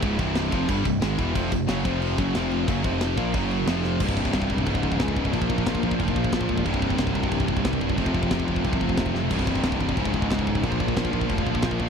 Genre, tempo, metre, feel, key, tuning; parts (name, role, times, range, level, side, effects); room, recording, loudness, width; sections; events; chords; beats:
heavy metal; 181 BPM; 4/4; straight; A4 = 440 Hz
distorted electric guitar; riff; 0.0-11.9 s; C2 to Bb3; -28 LUFS; equal; overdrive
heavy high-gain guitar; riff; 0.0-11.9 s; C2 to Bb3; -29 LUFS; left 13 dB; distortion
scooped high-gain guitar; riff; 0.0-11.9 s; C2 to Bb3; -30 LUFS; right 12 dB; distortion
fuzz picked electric bass; bass; 0.0-11.9 s; C1 to Db2; -28 LUFS; equal; overdrive
tight metal drum kit; drums; 0.0-11.9 s; china cymbal, crash cymbal, kick drum, snare drum; -28 LUFS; equal
little or no reverb; dry, close 1970s-style studio recording; -22 LUFS; side -6 dB against mid
0.0-4.0 A section; 4.0-11.9 B section
drum fill 3.8, 9.1
0.0 C; 1.4 F5; 3.3 F#5; 3.7 F5; 4.0 C; 4.7 Db5; 5.3 Bb5; 6.7 C5; 8.0 F5; 9.3 C5; 10.0 Db5; 10.6 Bb5
| 0.03 0.36 0.69 1.02 | 1.35 1.69 2.02 2.35 | 2.68 3.01 3.35 3.68 | 4.01 4.34 4.67 5.00 | 5.33 5.67 6.00 6.33 | 6.66 6.99 7.32 7.65 | 7.98 8.31 8.65 8.98 | 9.31 9.64 9.97 10.31 | 10.64 10.97 11.30 11.64